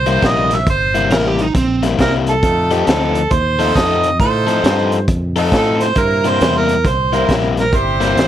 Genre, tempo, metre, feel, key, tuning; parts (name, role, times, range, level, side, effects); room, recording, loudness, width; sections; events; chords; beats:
electric blues shuffle; 136 BPM; 4/4; swing 64% on 8ths; A4 = 440 Hz
mellow harmonica; melody; 0.0-8.3 s; G4 to E5; -17 LUFS; right 3 dB; overdrive
fingered electric bass; bass; 0.0-8.3 s; G1 to A2; -20 LUFS; equal
overdriven semi-hollow guitar; riff; 0.1-8.3 s; C3 to A4; -18 LUFS; left 7 dB
crunchy breakbeat drum kit; drums; 0.1-8.3 s; hi-hat, kick drum, snare drum; -19 LUFS; equal
overdriven slide guitar; second line; 1.1-1.8 s; C4 to Bb4; -18 LUFS; right 4 dB
brilliant horn section; stabs; 2.4-8.3 s; G3 to Bb4; -23 LUFS; right 1 dB
light reverb; -12 LUFS; side -11 dB against mid
0.0-8.3 A section
0.0 C7; 2.4 F7; 6.0 C7
0.23 | 0.67 1.11 1.55 1.99 | 2.44 2.88 3.32 3.76 | 4.20 4.64 5.08 5.52 | 5.96 6.40 6.84 7.28 | 7.72 8.16